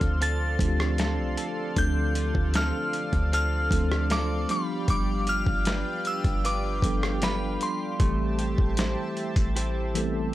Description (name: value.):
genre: contemporary R&B.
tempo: 77 BPM.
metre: 4/4.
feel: straight.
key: D dorian.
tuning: A4 = 440 Hz.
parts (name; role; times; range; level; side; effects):
glassy synth bell; melody; 0.0-10.3 s; B5 to A6; -31 LUFS; left 1 dB; chorus, tape echo.
mellow tine electric piano; accompaniment; 0.0-10.3 s; E3 to A4; -32 LUFS; equal; medium stereo tremolo.
chorused pulse-width pad; sustained chords; 0.0-10.3 s; G4 to C6; -37 LUFS; equal; none.
direct-recorded clean electric guitar; arpeggios; 0.0-10.3 s; D3 to C5; -35 LUFS; right 2 dB; spring reverb.
clean 808-style bass; bass; 0.0-10.3 s; G1 to D2; -28 LUFS; equal; none.
dusty soul sampler-style drum kit; drums; 0.0-10.1 s; hi-hat, kick drum, rim click, snare drum; -28 LUFS; equal; overdrive.
room: little or no reverb.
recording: dry, gritty hardware recording.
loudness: -24 LUFS.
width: side -15 dB against mid.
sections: 0.0-10.3 A section.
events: drum fill 9.6-10.3; tine electric piano fill 9.9-10.3.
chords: 0.0 Dm7; 4.5 G7; 8.0 Am7.